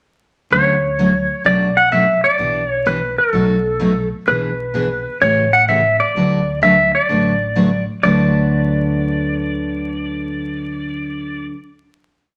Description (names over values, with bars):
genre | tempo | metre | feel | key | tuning
country, western swing | 127 BPM | 4/4 | swing 66% on 8ths | D major | A4 = 439 Hz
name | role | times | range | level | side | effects
clean lap steel guitar | melody | 0.5-11.5 s | A4 to F#5 | -19 LUFS | equal | none
picked steel-string acoustic guitar | accompaniment | 0.5-11.6 s | B2 to B4 | -21 LUFS | equal | none
upright bass | bass | 0.5-11.5 s | A1 to D2 | -28 LUFS | equal | none
room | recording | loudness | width
wet studio reverb, RT60 0.9 s | vinyl crackle | -17 LUFS | mono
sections
0.5-8.0 A section; 8.0-11.8 final chord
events
none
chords
0.5 Dmaj7; 1.4 Bm7; 2.4 G6/B; 3.3 B7; 4.3 E7/B; 5.2 A7; 6.2 D6